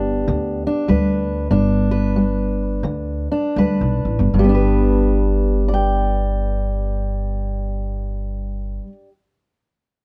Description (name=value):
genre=acoustic country blues, solo or duo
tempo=74-102 BPM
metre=4/4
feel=swing 64% on 8ths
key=G major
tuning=A4 = 440 Hz
part: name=fingerpicked steel-string acoustic guitar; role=accompaniment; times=0.0-9.1 s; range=G2 to G5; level=-23 LUFS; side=equal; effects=none
part: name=upright bass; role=bass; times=0.0-8.8 s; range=G1 to D2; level=-22 LUFS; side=equal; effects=none
room=light reverb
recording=none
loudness=-19 LUFS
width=mono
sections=0.0-4.3 A section; 4.3-7.6 B section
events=slowing down 0.0-4.3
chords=0.0 G